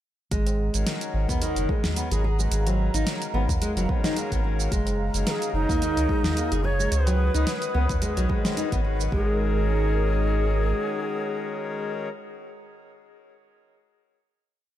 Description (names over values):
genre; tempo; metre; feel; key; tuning
organic downtempo; 109 BPM; 4/4; swing 55% on 16ths; G# dorian; A4 = 441 Hz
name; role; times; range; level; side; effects
warm analog pad; sustained chords; 0.3-12.1 s; G#3 to D#6; -35 LUFS; right 1 dB; chorus, sidechain pumping
nylon-string guitar; arpeggios; 0.3-9.4 s; D#3 to G#4; -30 LUFS; equal; ping-pong delay
warm sub bass; bass; 0.3-10.7 s; F#1 to C#2; -24 LUFS; equal; sidechain pumping
deep house drum kit; drums; 0.3-9.1 s; hi-hat, shaker, snare drum; -31 LUFS; right 1 dB; none
electronic kick drum; drums; 0.3-9.2 s; none; -27 LUFS; equal; none
tabla; percussion; 0.5-9.0 s; none; -34 LUFS; equal; none
pedal harmonium; accompaniment; 0.7-12.1 s; D#3 to C#5; -33 LUFS; left 5 dB; sidechain pumping, ping-pong delay
bright reedy low Native American-style wooden flute; melody; 5.3-12.1 s; D#4 to C#5; -30 LUFS; equal; ping-pong delay
room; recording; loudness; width
light reverb, small room ambience; none; -22 LUFS; side -12 dB against mid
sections
0.3-9.1 groove; 9.1-11.3 final chord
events
none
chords
0.3 G#m9; 4.7 F#maj9; 6.9 C#9sus4; 9.1 G#sus2